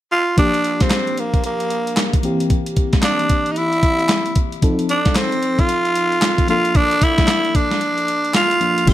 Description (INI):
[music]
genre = R&B, new jack swing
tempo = 113 BPM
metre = 4/4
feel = swing 62% on 16ths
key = unclear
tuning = A4 = 440 Hz
[part]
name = growling tenor saxophone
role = melody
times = 0.1-8.9 s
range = Bb3 to F4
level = -18 LUFS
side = equal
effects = ping-pong delay
[part]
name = FM electric piano with tremolo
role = accompaniment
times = 0.4-8.9 s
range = E3 to A4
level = -24 LUFS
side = left 2 dB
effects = none
[part]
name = clean 12-bit digital drum machine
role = drums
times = 0.4-8.9 s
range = crash cymbal, handclaps, hi-hat, kick drum, snare drum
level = -18 LUFS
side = equal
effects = none
[part]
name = deep dub fingered electric bass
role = bass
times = 8.9 s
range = G1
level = -15 LUFS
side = equal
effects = none
[sound]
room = light reverb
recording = bright 1980s-style digital production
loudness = -15 LUFS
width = side -13 dB against mid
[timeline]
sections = 0.4-8.9 A section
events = kick muted 7.8-8.9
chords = 0.4 Gm7; 2.2 C7; 4.6 F7; 6.5 Bbmaj7